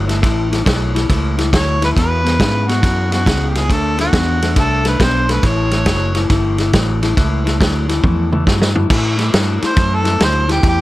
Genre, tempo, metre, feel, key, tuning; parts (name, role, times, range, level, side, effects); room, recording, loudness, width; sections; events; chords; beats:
electric blues shuffle; 138 BPM; 4/4; swing 66% on 8ths; A mixolydian; A4 = 440 Hz
electric guitar through a small old amp; riff; 0.0-10.8 s; E2 to B3; -20 LUFS; left 3 dB
fingered electric bass; bass; 0.0-10.8 s; F#1 to A2; -18 LUFS; equal
warm soul drum kit; drums; 0.1-10.8 s; crash cymbal, kick drum, ride cymbal, snare drum, toms; -17 LUFS; equal
mellow harmonica; melody; 1.6-6.3, 9.7-10.8 s; F#4 to C#5; -19 LUFS; right 1 dB
small room ambience; -13 LUFS; side -16 dB against mid
0.0-8.9 A section; 8.9-10.8 B section
drum fill 8.0-8.9; harmonica solo 8.9-10.8
0.0 A69; 2.0 E69; 3.7 D13; 5.4 A6; 8.9 A7(no3)
| 0.23 0.66 1.10 1.53 | 1.96 2.40 2.83 3.26 | 3.70 4.13 4.57 5.00 | 5.43 5.87 6.30 6.74 | 7.17 7.60 8.04 8.47 | 8.91 9.34 9.77 10.21 | 10.64